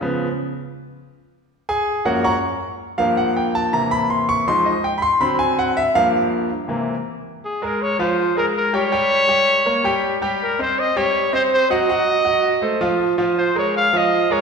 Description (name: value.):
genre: latin.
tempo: 162 BPM.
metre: 4/4.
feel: straight.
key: unclear.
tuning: A4 = 441 Hz.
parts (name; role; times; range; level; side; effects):
bright concert grand piano; accompaniment; 0.0-14.4 s; Gb2 to Db6; -18 LUFS; equal; none.
clear trumpet; melody; 7.4-14.4 s; Ab4 to F5; -18 LUFS; equal; none.
room: wet scoring stage reverb, RT60 1.7 s.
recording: recorded in a church or concert hall.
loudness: -16 LUFS.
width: side -5 dB against mid.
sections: 0.0-7.4 A section; 7.4-14.4 B section.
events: grand piano solo 0.0-7.4.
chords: 0.0 Db7; 1.5 Gbmaj7; 3.0 Gm9; 3.7 C7; 4.5 Fm7; 5.2 D7; 5.9 Gm7; 6.7 C7; 7.4 Bbsus2; 8.9 Gdim; 10.4 Eb6; 11.9 N.C.; 12.6 F; 13.4 Bb5.